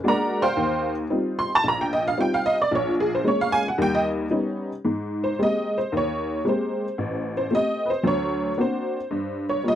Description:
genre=solo jazz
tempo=112 BPM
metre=4/4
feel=swing 68% on 8ths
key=Eb major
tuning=A4 = 442 Hz
part: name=honky-tonk upright piano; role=solo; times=0.0-9.8 s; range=A1 to C6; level=-21 LUFS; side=equal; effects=none
room=light reverb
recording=dry, close 1970s-style studio recording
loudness=-21 LUFS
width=side -11 dB against mid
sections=0.0-4.8 A section; 4.8-9.8 A section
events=honky-tonk piano solo 0.0-4.8, 4.8-9.8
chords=0.0 Bb7b13; 0.6 Eb69; 2.7 Bbm7; 3.8 Ebaug7; 4.8 Abmaj9; 7.0 Am7b5; 8.0 Daug7; 9.1 Gm7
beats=0.04 | 0.58 1.11 1.65 2.18 | 2.71 3.25 3.78 4.32 | 4.85 5.38 5.92 6.45 | 6.98 7.52 8.05 8.58 | 9.12 9.65

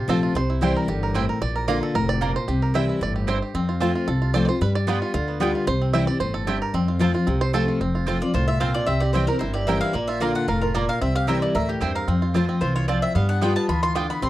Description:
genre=bluegrass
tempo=225 BPM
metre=4/4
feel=straight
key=F major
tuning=A4 = 441 Hz
part: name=bluegrass banjo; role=melody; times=0.0-14.3 s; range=Bb3 to F5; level=-28 LUFS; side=right 5 dB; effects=none
part: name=picked steel-string acoustic guitar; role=accompaniment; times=0.0-14.3 s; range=F2 to F4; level=-24 LUFS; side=left 2 dB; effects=none
part: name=upright bass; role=bass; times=0.0-14.3 s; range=F1 to G2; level=-25 LUFS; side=equal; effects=none
part: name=mandolin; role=stabs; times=0.1-14.1 s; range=Bb3 to Bb5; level=-28 LUFS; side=right 6 dB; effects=none
part: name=mandolin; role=melody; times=8.2-14.3 s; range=G4 to D6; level=-26 LUFS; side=left 1 dB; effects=none
room=little or no reverb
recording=dry, close 1970s-style studio recording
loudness=-20 LUFS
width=side -15 dB against mid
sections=0.0-7.8 A section; 7.8-14.3 B section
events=five-string banjo solo 0.0-7.8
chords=0.4 C; 1.4 Bb; 2.5 C; 3.5 F; 4.6 G7; 5.7 C; 6.7 F; 8.9 C; 9.9 Bb; 11.0 C; 12.1 F; 13.2 G7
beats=0.09 | 0.35 0.62 0.89 1.15 | 1.42 1.68 1.95 2.22 | 2.48 2.75 3.02 3.28 | 3.55 3.81 4.08 4.35 | 4.61 4.88 5.14 5.41 | 5.68 5.94 6.21 6.48 | 6.74 7.01 7.28 7.54 | 7.81 8.07 8.34 8.61 | 8.88 9.14 9.41 9.68 | 9.95 10.21 10.48 10.75 | 11.01 11.28 11.55 11.82 | 12.08 12.35 12.62 12.89 | 13.15 13.42 13.69 13.96 | 14.22

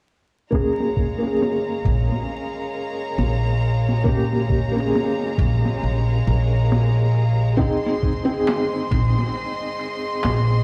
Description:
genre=trip hop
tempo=68 BPM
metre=4/4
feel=swing 58% on 16ths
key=Bb minor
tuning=A4 = 437 Hz
part: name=felt-muted upright piano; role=accompaniment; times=0.5-10.6 s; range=Bb3 to Ab4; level=-27 LUFS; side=equal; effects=tremolo, low-pass filter, tape echo
part: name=dark studio violin section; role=sustained chords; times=0.5-10.6 s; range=Ab3 to C6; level=-32 LUFS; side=equal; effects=none
part: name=boom bap sampler-style drum kit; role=drums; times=0.5-10.5 s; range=kick drum, ride cymbal, snare drum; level=-27 LUFS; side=equal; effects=low-pass filter on cymbals, low-pass filter on kick, low-pass filter on snare, low-pass filter on room
part: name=upright bass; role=bass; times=1.9-10.6 s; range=Bb1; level=-22 LUFS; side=equal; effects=tube saturation
part: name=darbuka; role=percussion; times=8.5-10.4 s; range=none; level=-34 LUFS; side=equal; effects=none
room=little or no reverb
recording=played on a big sound system in a bare room, large studio reverb, vinyl crackle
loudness=-21 LUFS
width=mono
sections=0.5-10.6 A section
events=filter sweep on felt piano 0.5-10.6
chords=0.5 Bbm7; 7.6 Ab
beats=| 0.53 1.41 2.29 3.18 | 4.06 4.94 5.82 6.71 | 7.59 8.47 9.35 10.23

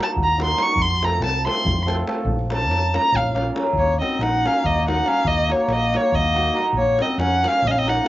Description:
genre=balkan folk, Balkan wedding band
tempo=282 BPM (eighths)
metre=7/8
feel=straight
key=unclear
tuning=A4 = 440 Hz
part: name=warm violin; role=melody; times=0.0-8.1 s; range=Db5 to Db6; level=-20 LUFS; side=equal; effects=cassette tape
part: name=hammered dulcimer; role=accompaniment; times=0.0-8.1 s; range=A3 to Bb4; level=-25 LUFS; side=right 1 dB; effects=cassette tape
part: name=davul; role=percussion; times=0.1-8.0 s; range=none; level=-29 LUFS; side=left 1 dB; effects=none
part: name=hollow-body short-scale fingered electric bass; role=bass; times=0.2-8.0 s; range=Bb1 to F2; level=-24 LUFS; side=equal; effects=none
part: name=bright clarinet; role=second line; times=3.8-8.1 s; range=Bb3 to Eb4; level=-25 LUFS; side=left 2 dB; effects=cassette tape
room=moderate booth ambience, RT60 0.3 s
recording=home recording on cassette, nothing above 7.6 kHz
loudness=-18 LUFS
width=side -15 dB against mid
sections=0.0-3.8 A section; 3.8-8.1 B section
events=violin solo 0.0-3.8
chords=0.0 Ebm; 0.8 F; 2.3 Bbm; 3.8 Ebm; 6.7 Bbm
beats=0.14 0.35 0.56 | 0.78 0.99 1.20 1.42 1.63 1.84 2.05 | 2.27 2.48 2.69 2.91 3.12 3.33 3.54 | 3.76 3.97 4.18 4.40 4.61 4.82 5.04 | 5.25 5.46 5.68 5.89 6.10 6.32 6.53 | 6.74 6.96 7.17 7.38 7.60 7.81 8.02

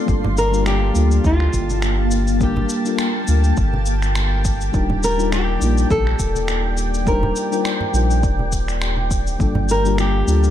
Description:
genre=sunset chillout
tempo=103 BPM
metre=4/4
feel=swing 56% on 16ths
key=G minor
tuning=A4 = 440 Hz
part: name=mellow FM electric piano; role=accompaniment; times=0.0-10.5 s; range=G3 to C5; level=-24 LUFS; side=left 4 dB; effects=chorus, auto-pan, ping-pong delay
part: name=shimmering ambient pad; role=sustained chords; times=0.0-10.5 s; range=Bb3 to A5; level=-26 LUFS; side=equal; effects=chorus, built-in reverb
part: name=warm sub bass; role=bass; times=0.1-10.5 s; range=Eb1 to D2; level=-19 LUFS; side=equal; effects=none
part: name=electronic kick drum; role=drums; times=0.1-9.5 s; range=none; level=-22 LUFS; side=equal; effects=overdrive
part: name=electronic shaker and finger snaps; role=drums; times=0.1-10.5 s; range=none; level=-28 LUFS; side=equal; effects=none
part: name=congas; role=percussion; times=0.2-9.7 s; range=none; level=-25 LUFS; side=right 2 dB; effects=none
part: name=flamenco guitar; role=melody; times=0.4-10.5 s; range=F4 to Bb4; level=-23 LUFS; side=left 1 dB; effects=ping-pong delay
room=digital ambience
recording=dark, warm production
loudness=-16 LUFS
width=side -11 dB against mid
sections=0.1-10.5 A section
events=none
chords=0.1 Gm9; 4.7 Ebmaj7; 9.4 Gm9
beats=| 0.08 0.66 1.24 1.83 | 2.41 2.99 3.57 4.16 | 4.74 5.32 5.90 6.49 | 7.07 7.65 8.23 8.82 | 9.40 9.98

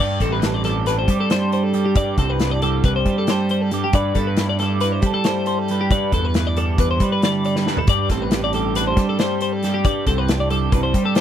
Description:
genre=math rock and midwest emo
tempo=274 BPM (eighths)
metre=9/8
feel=straight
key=unclear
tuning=A4 = 440 Hz
part: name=twelve-string electric guitar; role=accompaniment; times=0.0-11.2 s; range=G2 to D5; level=-25 LUFS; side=right 11 dB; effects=spring reverb
part: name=twelve-string electric guitar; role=arpeggios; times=0.0-11.2 s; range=G4 to D5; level=-23 LUFS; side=left 5 dB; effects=wide subtle chorus
part: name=fuzz picked electric bass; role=bass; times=0.0-11.2 s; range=A1 to G3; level=-21 LUFS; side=equal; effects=overdrive
part: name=loose indie drum kit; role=drums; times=0.2-11.2 s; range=hi-hat, kick drum, snare drum, toms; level=-21 LUFS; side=left 1 dB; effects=none
room=little or no reverb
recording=none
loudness=-17 LUFS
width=side -10 dB against mid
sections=0.0-11.2 A section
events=drum fill 7.6-7.9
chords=0.0 D7sus4; 3.9 Cmaj7/G; 5.9 G6; 7.9 D7sus4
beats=0.21 0.43 0.65 0.87 1.09 1.31 1.53 1.75 | 1.97 2.19 2.41 2.63 2.85 3.06 3.28 3.50 3.72 | 3.94 4.16 4.38 4.60 4.82 5.04 5.26 5.47 5.69 | 5.91 6.13 6.35 6.57 6.79 7.01 7.23 7.45 7.67 | 7.88 8.10 8.32 8.54 8.76 8.98 9.20 9.42 9.63 | 9.85 10.07 10.29 10.51 10.73 10.95 11.17

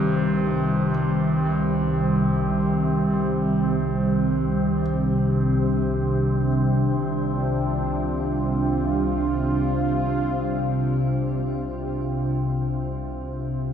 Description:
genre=dark ambient drone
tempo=free time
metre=none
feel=none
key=C minor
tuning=A4 = 440 Hz
part: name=sweeping resonant pad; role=sustained chords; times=0.0-13.7 s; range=Eb3 to G4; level=-24 LUFS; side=equal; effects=wide subtle chorus, shimmer reverb
part: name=bright grand piano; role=arpeggios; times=0.0-13.7 s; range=G2 to D4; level=-36 LUFS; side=right 2 dB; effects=diffuse ambient delay, shimmer reverb
part: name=organ-like drone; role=drone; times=0.0-13.7 s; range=C2 to C3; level=-23 LUFS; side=equal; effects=ensemble chorus, built-in reverb
room=wet cathedral reverb, RT60 5.3 s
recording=none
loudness=-21 LUFS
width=side -8 dB against mid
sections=0.0-13.7 A section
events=fade-in on synth drone 0.0-13.7; fade-in on grand piano 0.0-13.7; fade-out on analog synth pad 0.0-13.7; fade-out 8.0-13.7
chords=0.0 Cm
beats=free time

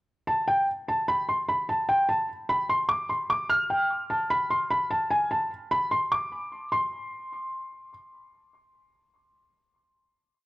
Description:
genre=hip hop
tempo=149 BPM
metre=4/4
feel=half-time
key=unclear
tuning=A4 = 442 Hz
part: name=felt-muted upright piano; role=solo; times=0.3-7.9 s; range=G5 to F6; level=-24 LUFS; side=equal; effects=none
room=light reverb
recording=dry, gritty hardware recording, cassette tape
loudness=-24 LUFS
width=side -20 dB against mid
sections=0.3-6.7 hook; 6.7-9.9 final note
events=none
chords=none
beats=| 0.28 0.68 1.08 1.48 | 1.89 2.29 2.69 3.10 | 3.50 3.90 4.30 4.71 | 5.11 5.51 5.91 6.32 | 6.72 7.12 7.52

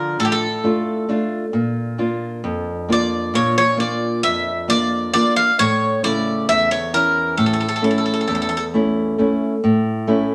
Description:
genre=greek folk, Greek bouzouki band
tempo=133 BPM (eighths)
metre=9/8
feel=straight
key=unclear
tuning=A4 = 440 Hz
part: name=Greek bouzouki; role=melody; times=0.0-8.6 s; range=G4 to F5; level=-21 LUFS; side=equal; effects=none
part: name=nylon-string guitar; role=accompaniment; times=0.0-10.3 s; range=E2 to F4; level=-21 LUFS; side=equal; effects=none
room=wet studio reverb, RT60 0.9 s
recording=none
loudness=-19 LUFS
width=mono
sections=0.0-9.6 A section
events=none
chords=0.0 Dm; 1.5 Bb; 5.6 A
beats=0.18 0.63 1.08 | 1.53 1.98 2.43 2.88 3.33 3.78 4.23 4.68 5.13 | 5.58 6.03 6.47 6.92 7.37 7.82 8.27 8.72 9.17 | 9.62 10.07

